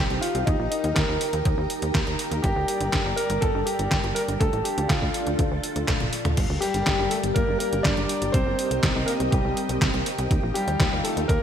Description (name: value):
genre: italo disco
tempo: 122 BPM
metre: 4/4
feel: straight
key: G minor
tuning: A4 = 440 Hz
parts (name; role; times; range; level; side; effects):
- warm concert grand piano; melody; 0.0-11.4 s; G3 to D5; -27 LUFS; equal; ping-pong delay, shimmer reverb
- string machine, full ensemble; sustained chords; 0.0-11.4 s; G3 to Eb5; -29 LUFS; equal; ensemble chorus, shimmer reverb
- tight sequencer bass; bass; 0.0-11.4 s; D1 to Eb2; -28 LUFS; equal; none
- detuned 8-bit digital drum machine; drums; 0.1-11.4 s; crash cymbal, handclaps, hi-hat, snare drum, toms; -27 LUFS; equal; gated reverb
- electronic kick drum; drums; 0.5-11.4 s; none; -26 LUFS; equal; none
room: moderate lush hall reverb, RT60 2.1 s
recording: bright 1980s-style digital production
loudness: -21 LUFS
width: side -8 dB against mid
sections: 0.0-6.4 A section; 6.4-11.4 B section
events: drum fill 5.9-6.4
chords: 0.5 Eb; 2.4 Gm; 4.4 Dm; 6.4 Gm; 8.3 Cm7; 10.3 Ebadd9